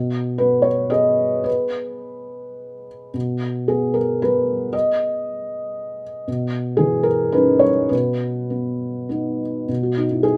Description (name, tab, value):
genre	neoclassical minimalist piano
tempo	100-120 BPM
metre	3/4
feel	rubato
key	unclear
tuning	A4 = 440 Hz
part	felt-muted upright piano	solo	0.0-10.4 s	B2 to D#5	-21 LUFS	equal	none
room	light reverb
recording	none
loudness	-20 LUFS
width	mono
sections	0.0-9.7 A section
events	none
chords	0.0 G#m/B; 6.3 C#madd9/B; 7.9 B